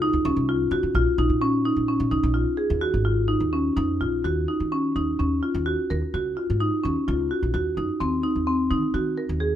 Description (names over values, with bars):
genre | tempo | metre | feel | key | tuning
contemporary instrumental, chamber music in an uneven meter | 128 BPM | 7/4 | straight | Eb dorian | A4 = 440 Hz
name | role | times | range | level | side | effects
marimba with medium hard mallets | arpeggios | 0.0-9.5 s | C4 to Bb4 | -23 LUFS | equal | none
upright bass | bass | 0.0-9.6 s | Ab1 to Eb3 | -26 LUFS | equal | none
room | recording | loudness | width
moderate studio reverb, RT60 0.6 s | none | -21 LUFS | side -10 dB against mid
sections
0.0-4.2 A section; 4.2-9.6 B section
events
none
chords
0.0 Dbmaj9; 0.9 Bb7sus4; 4.2 Ebm9; 7.5 Ab7/Eb (rootless)